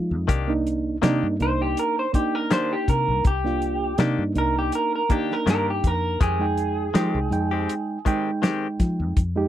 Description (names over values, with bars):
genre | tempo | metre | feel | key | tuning
straight-eighth soul blues | 81 BPM | 4/4 | swing 54% on 16ths | C minor | A4 = 440 Hz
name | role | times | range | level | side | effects
mellow reed electric piano | accompaniment | 0.0-9.5 s | Ab3 to G5 | -26 LUFS | right 3 dB | none
fingered electric bass | bass | 0.0-9.5 s | C2 to F3 | -26 LUFS | left 1 dB | none
direct-recorded clean electric guitar | stabs | 0.3-8.7 s | Eb3 to G4 | -27 LUFS | left 8 dB | none
warm soul drum kit | drums | 0.3-9.4 s | hi-hat, kick drum, snare drum | -22 LUFS | equal | none
electric guitar through a small old amp | melody | 1.4-8.4 s | G4 to C5 | -25 LUFS | right 1 dB | none
room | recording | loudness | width
light reverb | dry, close 1970s-style studio recording | -21 LUFS | side -12 dB against mid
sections
0.0-9.5 A section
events
clean electric guitar solo 0.0-9.5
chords
0.3 Cm9; 6.2 Fm9